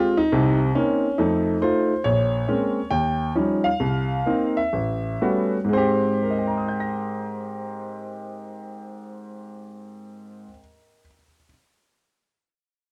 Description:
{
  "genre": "solo jazz",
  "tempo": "119-140 BPM",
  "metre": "4/4",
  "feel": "swing 66% on 8ths",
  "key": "Ab major",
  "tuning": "A4 = 443 Hz",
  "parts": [
    { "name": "clear grand piano", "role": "solo", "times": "0.0-11.5 s", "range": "A1 to Bb6", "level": "-24 LUFS", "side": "equal", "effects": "none" }
  ],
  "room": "light reverb",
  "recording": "dry, close 1970s-style studio recording",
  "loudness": "-23 LUFS",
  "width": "mono",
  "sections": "0.0-2.0 A section; 2.0-5.7 B section; 5.7-9.8 C section",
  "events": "slowing down 2.0-5.7",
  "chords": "0.3 Cm7; 1.2 F7; 2.0 Bbm9; 2.9 Eb9; 3.8 Cm7; 4.7 A13; 5.7 Abmaj7",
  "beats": "| 0.33 0.76 1.19 1.62 | 2.05 2.48 2.91 3.35 | 3.80 4.26 4.73 5.21 | 5.71 6.21 6.72 7.23 | 7.73 8.24 8.74 9.25"
}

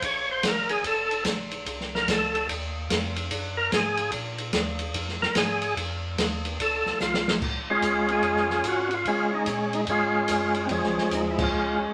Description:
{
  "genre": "soul jazz organ trio",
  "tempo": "146 BPM",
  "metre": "4/4",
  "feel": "swing 64% on 8ths",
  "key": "Bb minor",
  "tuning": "A4 = 440 Hz",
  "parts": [
    { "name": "percussive tonewheel organ", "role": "melody", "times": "0.0-11.9 s", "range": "F3 to Db5", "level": "-26 LUFS", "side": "equal", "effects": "overdrive, fast rotary speaker" },
    { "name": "tonewheel organ", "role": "bass", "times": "0.0-11.9 s", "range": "F1 to Db3", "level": "-39 LUFS", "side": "equal", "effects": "overdrive, chorus vibrato, slow rotary speaker" },
    { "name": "open jazz drum kit", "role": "drums", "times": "0.0-11.5 s", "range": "crash cymbal, hi-hat, kick drum, ride cymbal, snare drum", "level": "-31 LUFS", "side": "equal", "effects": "none" }
  ],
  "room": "wet studio reverb, RT60 0.8 s",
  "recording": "none",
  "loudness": "-26 LUFS",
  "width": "mono",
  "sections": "0.0-7.4 A section; 7.4-11.9 B section",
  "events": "tonewheel organ solo 0.0-7.4; drum fill 7.0-7.4; band accent 11.3",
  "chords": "0.0 Bbm7; 0.8 F; 2.5 Ebm; 4.1 Bb5; 5.8 F7; 7.4 Bbm7",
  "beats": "0.02 0.43 | 0.84 1.25 1.66 2.07 | 2.48 2.89 3.30 3.71 | 4.12 4.54 4.95 5.36 | 5.77 6.18 6.59 7.00 | 7.41 7.82 8.23 8.64 | 9.06 9.47 9.88 10.29 | 10.71 11.12 11.53"
}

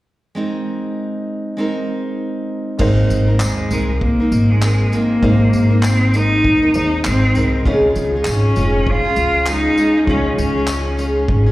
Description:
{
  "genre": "acoustic pop",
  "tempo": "99 BPM",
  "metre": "4/4",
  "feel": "swing 60% on 16ths",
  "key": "Ab major",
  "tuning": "A4 = 442 Hz",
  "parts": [
    { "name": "picked steel-string acoustic guitar", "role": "accompaniment", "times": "0.3-11.5 s", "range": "Db3 to Bb4", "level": "-20 LUFS", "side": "right 1 dB", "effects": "none" },
    { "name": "warm concert grand piano", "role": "accompaniment", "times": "2.8-11.5 s", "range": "Ab3 to Db5", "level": "-28 LUFS", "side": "left 2 dB", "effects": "slapback echo" },
    { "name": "upright bass", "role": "bass", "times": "2.8-11.5 s", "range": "F1 to Eb2", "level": "-17 LUFS", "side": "equal", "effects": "none" },
    { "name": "natural country drum kit", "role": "drums", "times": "2.8-11.5 s", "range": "crash cymbal, handclaps, kick drum, tambourine", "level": "-25 LUFS", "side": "equal", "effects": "none" },
    { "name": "bright cello", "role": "melody", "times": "3.4-10.9 s", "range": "Ab3 to F4", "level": "-17 LUFS", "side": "left 1 dB", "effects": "slapback echo, tape echo" },
    { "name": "tambourine", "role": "percussion", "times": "3.4-10.8 s", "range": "none", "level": "-32 LUFS", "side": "left 1 dB", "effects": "none" }
  ],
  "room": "light reverb, studio reverb",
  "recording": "live gig heard through the venue's PA, recital hall reverb",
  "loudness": "-14 LUFS",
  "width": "side -17 dB against mid",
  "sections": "0.4-2.8 A section; 2.8-11.5 B section",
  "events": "none",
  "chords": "0.4 Abadd9; 7.7 Db",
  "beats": "| 0.37 0.98 1.59 2.19 | 2.80 3.41 4.02 4.62 | 5.23 5.83 6.44 7.05 | 7.65 8.26 8.86 9.47 | 10.07 10.68 11.29"
}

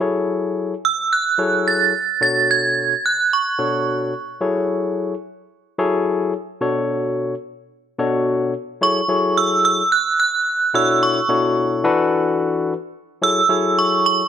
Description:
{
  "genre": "funk",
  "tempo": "109 BPM",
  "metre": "4/4",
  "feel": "straight",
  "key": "F# minor",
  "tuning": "A4 = 442 Hz",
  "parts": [
    { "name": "barky tine electric piano", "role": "accompaniment", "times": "0.0-14.2 s", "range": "B2 to C#5", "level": "-19 LUFS", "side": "left 3 dB", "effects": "none" },
    { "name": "metallic FM bell", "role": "melody", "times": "0.8-3.8, 8.8-14.3 s", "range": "C#6 to A6", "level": "-17 LUFS", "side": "right 4 dB", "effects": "chorus, slapback echo" }
  ],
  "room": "light reverb",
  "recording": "none",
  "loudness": "-16 LUFS",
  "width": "side -9 dB against mid",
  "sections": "0.0-8.8 A section; 8.8-14.3 B section",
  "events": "none",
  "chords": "0.0 F#m7; 2.2 Bm9; 4.4 F#m7; 6.6 Bm9; 8.8 F#m7; 10.7 Bm11; 11.8 E7sus4; 13.2 F#m7",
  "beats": "| 0.01 0.56 1.11 1.66 | 2.21 2.76 3.31 3.86 | 4.41 4.96 5.51 6.06 | 6.62 7.17 7.72 8.27 | 8.82 9.37 9.92 10.47 | 11.02 11.57 12.12 12.67 | 13.22 13.77"
}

